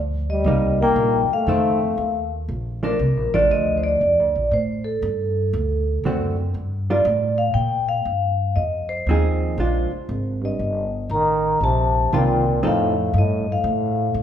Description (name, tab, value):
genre	jazz, small-group swing and bop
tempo	118 BPM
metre	4/4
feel	swing 67% on 8ths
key	Bb major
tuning	A4 = 440 Hz
part	upright bass	bass	0.0-14.2 s	G1 to Bb2	-23 LUFS	equal	none
part	vibraphone with medium mallets	melody	0.3-14.2 s	A4 to Bb5	-22 LUFS	left 1 dB	none
part	breathy trombone	second line	0.3-2.3, 10.4-14.2 s	G2 to Bb3	-23 LUFS	equal	none
part	hollow-body jazz guitar	accompaniment	0.5-12.9 s	D3 to Bb4	-25 LUFS	right 2 dB	none
room	wet large studio reverb, RT60 1.5 s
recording	band playing live in one room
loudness	-18 LUFS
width	side -9 dB against mid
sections	0.0-2.5 A section; 2.5-14.2 A section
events	none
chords	0.5 Cm7; 1.5 F7; 2.5 Bbmaj7; 4.5 Gsus24; 5.5 D7; 6.6 Gm7; 8.6 Fm7; 9.6 Bb7; 10.6 Eb69; 12.6 F7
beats	| 0.46 0.97 1.48 1.99 | 2.50 3.00 3.51 4.02 | 4.52 5.03 5.54 6.05 | 6.55 7.06 7.57 8.07 | 8.58 9.09 9.59 10.10 | 10.61 11.12 11.62 12.13 | 12.63 13.14 13.65 14.16